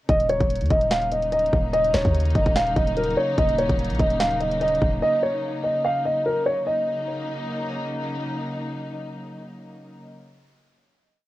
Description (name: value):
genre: hip hop, trap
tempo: 146 BPM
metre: 4/4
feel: half-time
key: Eb minor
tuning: A4 = 440 Hz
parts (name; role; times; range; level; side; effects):
- dark concert grand piano; melody; 0.1-7.9 s; Bb4 to F5; -22 LUFS; equal; cassette tape, tape echo
- dark studio string section; sustained chords; 0.1-10.1 s; Db3 to Eb4; -30 LUFS; left 1 dB; cassette tape
- warm 808-style bass; bass; 0.1-5.0 s; Eb1 to Eb2; -26 LUFS; equal; none
- trap drum kit; drums; 0.1-4.9 s; hi-hat, kick drum, snare drum; -24 LUFS; equal; cassette tape
room: little or no reverb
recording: home recording on cassette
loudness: -20 LUFS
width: side -15 dB against mid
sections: 0.1-6.7 hook; 6.7-10.0 final chord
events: none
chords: 0.1 Ebm7